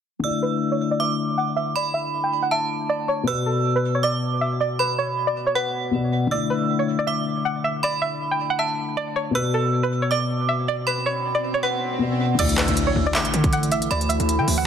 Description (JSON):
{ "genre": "hip hop, trap", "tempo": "158 BPM", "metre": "4/4", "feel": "half-time", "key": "unclear", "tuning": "A4 = 445 Hz", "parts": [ { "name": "string-like resonator pluck", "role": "melody", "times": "0.2-14.7 s", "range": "A4 to G5", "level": "-25 LUFS", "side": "right 1 dB", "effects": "chorus, low-pass filter, tape echo" }, { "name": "metallic FM bell", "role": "second line", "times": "0.2-14.6 s", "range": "F#5 to E6", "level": "-26 LUFS", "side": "right 5 dB", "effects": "chorus, tape echo" }, { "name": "dark concert grand piano", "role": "accompaniment", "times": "0.2-14.7 s", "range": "B2 to D5", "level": "-25 LUFS", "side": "left 4 dB", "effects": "low-pass filter" }, { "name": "swell and impact", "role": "sound effects", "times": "11.0-13.9 s", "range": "none", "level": "-31 LUFS", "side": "right 1 dB", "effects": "none" }, { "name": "deep dark ambient pad", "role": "sustained chords", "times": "13.2-14.7 s", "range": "D3 to E4", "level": "-28 LUFS", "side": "equal", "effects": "chorus, built-in reverb" }, { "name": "distorted 808-style bass", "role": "bass", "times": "12.4-14.7 s", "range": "D2 to D3", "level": "-23 LUFS", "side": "right 1 dB", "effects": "distortion" }, { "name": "trap drum kit", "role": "drums", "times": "12.4-14.6 s", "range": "crash cymbal, handclaps, hi-hat, kick drum", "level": "-24 LUFS", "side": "equal", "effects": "none" } ], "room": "light reverb", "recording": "dense, heavily limited modern master", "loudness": "-20 LUFS", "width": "side -8 dB against mid", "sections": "0.2-12.4 A section; 12.4-14.7 B section", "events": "filter sweep 0.2-12.4; swell 11.0-12.4; impact 12.4-13.9", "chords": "0.2 Dsus2; 3.3 Bm; 6.3 Dsus2; 9.4 Bm; 12.4 Dsus2", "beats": "| 0.24 0.62 1.00 1.38 | 1.76 2.13 2.52 2.90 | 3.27 3.65 4.03 4.41 | 4.79 5.17 5.55 5.93 | 6.31 6.69 7.07 7.45 | 7.83 8.21 8.59 8.97 | 9.35 9.73 10.11 10.49 | 10.87 11.25 11.63 12.01 | 12.39 12.77 13.15 13.53 | 13.91 14.29 14.67" }